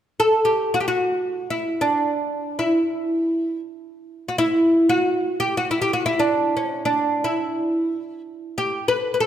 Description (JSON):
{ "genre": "turkish", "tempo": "free time", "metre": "none", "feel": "none", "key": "E makam huseyni", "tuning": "A4 = 440 Hz", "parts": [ { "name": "oud", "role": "melody", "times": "0.2-9.3 s", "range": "C#4-30c to B4", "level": "-19 LUFS", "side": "equal", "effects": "none" } ], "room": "moderate concert hall reverb, RT60 1.9 s", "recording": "none", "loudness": "-19 LUFS", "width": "side -10 dB against mid", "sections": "0.0-9.3 A section", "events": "none", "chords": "none", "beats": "free time" }